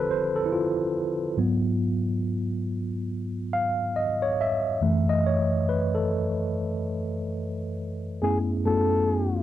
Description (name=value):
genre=R&B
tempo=70 BPM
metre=4/4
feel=swing 60% on 16ths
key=F# dorian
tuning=A4 = 440 Hz
part: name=mellow tine electric piano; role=accompaniment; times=0.0-9.4 s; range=F#2 to E#5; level=-24 LUFS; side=equal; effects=medium stereo tremolo
part: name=breathy flugelhorn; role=melody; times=8.2-9.4 s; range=G#4 to A4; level=-25 LUFS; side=left 3 dB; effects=slapback echo
room=light reverb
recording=dry, close 1970s-style studio recording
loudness=-24 LUFS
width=side -12 dB against mid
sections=0.0-8.2 A section; 8.2-9.4 B section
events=tine electric piano solo 0.0-8.2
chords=0.0 Dm7; 1.4 G#m7; 4.8 F#m7; 8.2 F#m11